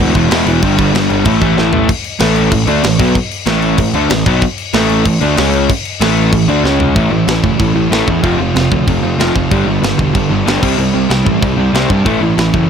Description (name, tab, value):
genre	punk rock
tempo	189 BPM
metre	4/4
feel	straight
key	unclear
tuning	A4 = 440 Hz
part	crunchy overdriven guitar	riff	0.0-12.7 s	E2 to D4	-16 LUFS	left 10 dB	none
part	overdriven electric guitar	riff	0.0-12.7 s	E2 to D4	-16 LUFS	right 12 dB	none
part	overdriven semi-hollow guitar	riff	0.0-12.7 s	G2 to F4	-18 LUFS	equal	none
part	fuzz picked electric bass	bass	0.0-12.7 s	E1 to G2	-17 LUFS	equal	overdrive
part	tight metal drum kit	drums	0.0-12.6 s	crash cymbal, kick drum, snare drum, toms	-17 LUFS	equal	none
room	little or no reverb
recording	none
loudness	-10 LUFS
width	side -7 dB against mid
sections	0.0-1.9 A section; 1.9-7.0 B section; 7.0-12.7 C section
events	drum fill 1.6-1.9, 6.6-7.0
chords	0.0 E; 0.6 G; 1.3 A; 1.9 A5; 5.4 C#5; 6.0 A5; 6.6 C#5; 7.0 A; 8.2 F; 9.5 G; 10.6 C; 12.1 A